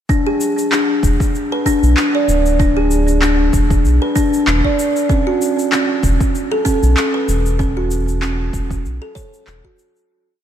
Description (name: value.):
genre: organic downtempo.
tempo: 96 BPM.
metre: 4/4.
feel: swing 55% on 16ths.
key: E mixolydian.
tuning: A4 = 436 Hz.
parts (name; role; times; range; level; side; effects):
kalimba; arpeggios; 0.1-9.7 s; C#4 to D5; -16 LUFS; equal; tape echo.
electronic kick drum; drums; 0.1-9.8 s; none; -19 LUFS; equal; overdrive.
electronic shaker and handclaps; drums; 0.1-10.1 s; none; -23 LUFS; left 1 dB; overdrive.
round analog bass; bass; 1.0-9.6 s; D1 to B1; -16 LUFS; equal; tube saturation.
room: moderate cathedral reverb, RT60 4.9 s.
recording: dreamy mix soaked in reverb.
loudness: -13 LUFS.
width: side -10 dB against mid.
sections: 0.1-10.1 groove.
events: fade-out 6.8-10.1.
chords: 0.1 E7(no3); 5.1 N.C..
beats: | 0.10 0.72 1.35 1.97 | 2.60 3.22 3.85 4.47 | 5.10 5.72 6.35 6.97 | 7.60 8.22 8.85 9.47.